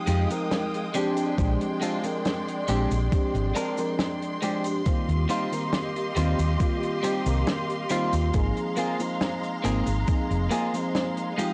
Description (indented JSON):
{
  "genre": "vaporwave",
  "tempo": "69 BPM",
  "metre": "4/4",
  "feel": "straight",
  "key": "unclear",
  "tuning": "A4 = 440 Hz",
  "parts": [
    { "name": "mellow FM electric piano", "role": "accompaniment", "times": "0.0-11.5 s", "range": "Eb3 to C5", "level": "-32 LUFS", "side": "equal", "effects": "lush chorus, analog delay" },
    { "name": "rich symphonic string section", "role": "sustained chords", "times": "0.0-11.5 s", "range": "Ab3 to Eb6", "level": "-34 LUFS", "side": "equal", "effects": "none" },
    { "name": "clean electric guitar", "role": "riff", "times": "0.1-11.5 s", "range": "G3 to Bb4", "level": "-33 LUFS", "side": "equal", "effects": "subtle chorus, vintage 12-bit sampler grit, analog delay" },
    { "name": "hollow-body short-scale fingered electric bass", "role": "bass", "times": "0.1-10.5 s", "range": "F1 to F2", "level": "-28 LUFS", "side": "equal", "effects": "tube saturation" },
    { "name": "warm soul drum kit", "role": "drums", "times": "0.1-11.5 s", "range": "cabasa, hi-hat, snare drum", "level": "-35 LUFS", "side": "equal", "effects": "none" },
    { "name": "electronic kick drum", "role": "drums", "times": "1.4-10.3 s", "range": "none", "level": "-27 LUFS", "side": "equal", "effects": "overdrive" }
  ],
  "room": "small room ambience",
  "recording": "cassette tape",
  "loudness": "-26 LUFS",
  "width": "mono",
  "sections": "0.0-11.5 A section",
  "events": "none",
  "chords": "0.0 Fm9; 0.9 Bb13; 4.9 Eb69; 8.3 Ab69"
}